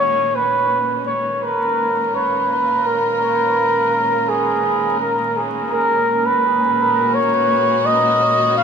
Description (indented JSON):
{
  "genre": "ambient",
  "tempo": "free time",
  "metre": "none",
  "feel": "none",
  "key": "unclear",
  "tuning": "A4 = 440 Hz",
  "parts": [
    { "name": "trumpet with bucket mute", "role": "melody", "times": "0.0-8.6 s", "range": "G#4 to E#5", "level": "-15 LUFS", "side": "right 1 dB", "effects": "dub echo" },
    { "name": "warm chamber string section", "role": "sustained chords", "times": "0.0-8.6 s", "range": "A#2 to F#4", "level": "-25 LUFS", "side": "left 1 dB", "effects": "none" }
  ],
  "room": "moderate huge ambient reverb, RT60 4.8 s",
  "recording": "vinyl crackle",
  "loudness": "-15 LUFS",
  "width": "side -6 dB against mid",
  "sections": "0.0-8.6 A section",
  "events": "fade-in on string section 0.0-8.6",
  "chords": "0.0 C#13; 5.7 G#m7"
}